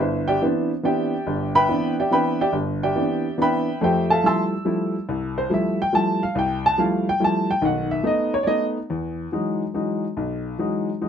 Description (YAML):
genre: jazz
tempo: 141 BPM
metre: 3/4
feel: swing 67% on 8ths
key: C major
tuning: A4 = 439 Hz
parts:
  - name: warm upright piano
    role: solo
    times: 0.0-11.1 s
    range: G1 to E6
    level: -20 LUFS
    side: equal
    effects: none
room: moderate club reverb, RT60 0.6 s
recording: dark, warm production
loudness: -20 LUFS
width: side -8 dB against mid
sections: 0.0-8.9 A section; 8.9-11.1 B section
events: none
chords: 0.0 Cmaj9; 3.8 Fmaj9; 7.6 B7; 8.9 Emaj9